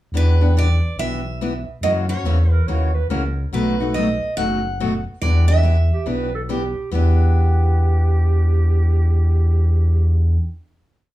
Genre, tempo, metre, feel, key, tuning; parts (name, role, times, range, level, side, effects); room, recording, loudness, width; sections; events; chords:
acoustic string swing (jazz manouche); 141 BPM; 4/4; swing 63% on 8ths; E minor; A4 = 440 Hz
picked steel-string acoustic guitar; accompaniment; 0.1-10.4 s; B2 to G4; -25 LUFS; left 3 dB
growling FM bass; bass; 0.1-10.4 s; F#1 to F#2; -16 LUFS; equal
picked steel-string acoustic guitar; melody; 0.2-6.0 s; B4 to F#5; -25 LUFS; right 3 dB
clear clarinet; second line; 2.5-10.4 s; G4 to C#5; -28 LUFS; right 7 dB
little or no reverb; small room ambience; -16 LUFS; side -15 dB against mid
0.1-6.9 A section; 6.9-10.3 final chord
0.1 Em7; 1.8 F#7; 3.5 B7; 5.2 Em7